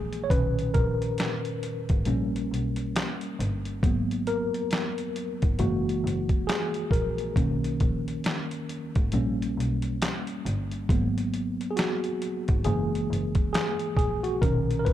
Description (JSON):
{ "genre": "lo-fi hip hop", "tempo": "68 BPM", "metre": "4/4", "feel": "swing 60% on 16ths", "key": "B major", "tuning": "A4 = 440 Hz", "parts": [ { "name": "tine electric piano", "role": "accompaniment", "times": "0.0-14.9 s", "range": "A#2 to C#5", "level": "-28 LUFS", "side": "equal", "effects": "overdrive, fast stereo tremolo" }, { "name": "rich double bass", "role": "bass", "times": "0.0-14.9 s", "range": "F#1 to B1", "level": "-30 LUFS", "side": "equal", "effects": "none" }, { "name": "trip hop sampler-style drum kit", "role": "drums", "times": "0.1-14.9 s", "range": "handclaps, hi-hat, kick drum, snare drum", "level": "-27 LUFS", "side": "equal", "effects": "none" } ], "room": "little or no reverb", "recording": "dark, warm production", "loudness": "-25 LUFS", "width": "side -12 dB against mid", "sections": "0.0-14.9 A section", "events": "tine electric piano solo 0.0-14.9", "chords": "0.3 Bmaj9; 2.1 Gdim; 3.8 G#m9; 5.6 F#9; 7.4 Bmaj9; 9.1 Gdim; 10.9 G#m9; 12.7 F#9; 14.4 Bmaj9" }